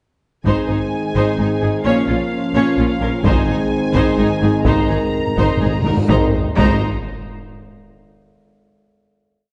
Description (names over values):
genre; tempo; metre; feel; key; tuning
cinematic, epic orchestral film score; 128 BPM; 3/4; straight; Ab major; A4 = 440 Hz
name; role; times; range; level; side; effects
rich symphonic violin section; melody; 0.5-6.9 s; F5 to Bb5; -30 LUFS; equal; none
clear symphonic violin section; second line; 0.5-6.9 s; Eb4 to Db5; -29 LUFS; equal; none
rich symphonic viola section; accompaniment; 0.5-6.8 s; Db4 to Eb4; -25 LUFS; equal; none
mellow French horn section; sustained chords; 0.5-6.3 s; C4 to Bb4; -26 LUFS; equal; none
mellow trombone section; sustained chords; 0.5-6.3 s; Eb3 to Bb3; -25 LUFS; equal; none
rich symphonic cello section; bass; 0.5-6.8 s; Ab2 to Bb2; -24 LUFS; equal; none
rich symphonic double bass section; bass; 0.5-6.9 s; Ab1 to Bb1; -25 LUFS; equal; none
taiko ensemble; drums; 0.5-7.5 s; none; -25 LUFS; equal; none
timpani; percussion; 3.2-6.8 s; Ab2; -26 LUFS; equal; none
reverse cymbal and sub drop; sound effects; 5.9-7.6 s; none; -33 LUFS; equal; none
room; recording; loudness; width
wet scoring stage reverb, RT60 1.8 s; nothing above 10.5 kHz; -17 LUFS; mono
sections
0.5-6.1 theme; 6.1-7.6 final chord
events
timpani fill 4.7-6.1; reverse cymbal 5.9; impact 6.1-7.6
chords
0.5 Ab; 1.8 Bbm; 3.2 Ab; 4.7 Abadd9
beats
| 0.45 0.92 1.38 | 1.85 2.31 2.78 | 3.24 3.71 4.18 | 4.65 5.13 5.61 | 6.09 6.58 7.07